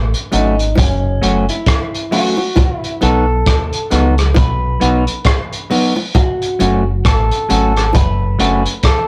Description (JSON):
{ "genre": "roots reggae", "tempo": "67 BPM", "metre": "4/4", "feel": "swing 60% on 16ths", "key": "F# dorian", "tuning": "A4 = 440 Hz", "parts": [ { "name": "deep dub fingered electric bass", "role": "bass", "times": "0.0-8.6 s", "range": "F#1 to D#2", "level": "-19 LUFS", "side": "equal", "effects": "none" }, { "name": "crunchy breakbeat drum kit", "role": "drums", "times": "0.1-9.1 s", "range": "hi-hat, kick drum, rim click", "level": "-18 LUFS", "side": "equal", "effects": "none" }, { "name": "electric guitar at the edge of break-up", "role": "melody", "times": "0.3-9.1 s", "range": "C#4 to B4", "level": "-23 LUFS", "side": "equal", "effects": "analog delay" }, { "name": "semi-hollow electric guitar", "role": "accompaniment", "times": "0.3-8.6 s", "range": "F#3 to F#4", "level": "-18 LUFS", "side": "equal", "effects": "none" }, { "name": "bongos", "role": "percussion", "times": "0.3-8.2 s", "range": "none", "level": "-24 LUFS", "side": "equal", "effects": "none" } ], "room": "wet small room reverb, RT60 0.6 s", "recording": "rough rehearsal-room recording", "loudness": "-15 LUFS", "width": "mono", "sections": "0.0-9.1 A section", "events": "none", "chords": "0.0 F#m; 2.6 B; 6.2 F#m" }